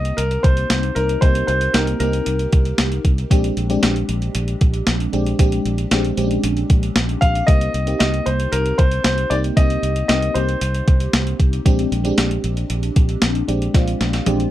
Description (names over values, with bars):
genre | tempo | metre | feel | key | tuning
1980s-style pop | 115 BPM | 4/4 | straight | C minor | A4 = 440 Hz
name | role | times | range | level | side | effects
clear grand piano | melody | 0.0-3.0, 7.2-11.4 s | Bb4 to F5 | -22 LUFS | left 1 dB | none
FM electric piano with soft pad layer | accompaniment | 0.0-14.5 s | Ab3 to Bb4 | -23 LUFS | equal | chorus, phaser
fingered electric bass | bass | 0.0-14.5 s | Bb1 to C2 | -21 LUFS | equal | none
clean 12-bit digital drum machine | drums | 0.1-14.5 s | hi-hat, kick drum, snare drum, toms | -18 LUFS | equal | overdrive
room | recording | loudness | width
moderate booth ambience, RT60 0.2 s | dark, warm production | -16 LUFS | side -13 dB against mid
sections
0.0-14.5 A section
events
drum fill 13.7-14.5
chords
0.0 Cm7; 3.3 Bb13; 7.5 Cm7; 11.7 Bb13